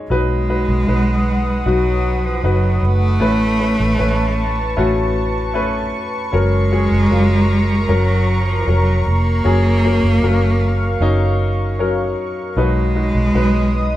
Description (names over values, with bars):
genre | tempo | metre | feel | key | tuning
pop | 77 BPM | 4/4 | straight | unclear | A4 = 441 Hz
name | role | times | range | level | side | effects
clear upright piano | accompaniment | 0.0-14.0 s | A2 to C#5 | -21 LUFS | left 3 dB | none
rich cello | melody | 0.1-14.0 s | E#3 to A#3 | -20 LUFS | right 1 dB | none
lush unison pad | sustained chords | 0.5-14.0 s | A#4 to D#6 | -25 LUFS | right 1 dB | chorus
vintage muted fingered electric bass | bass | 0.1-14.0 s | E#1 to B1 | -17 LUFS | right 1 dB | none
room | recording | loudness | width
light reverb | band playing live in one room | -14 LUFS | side -14 dB against mid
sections
0.1-14.0 A section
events
none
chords
0.1 B; 3.2 Aadd9; 6.3 F#; 12.6 B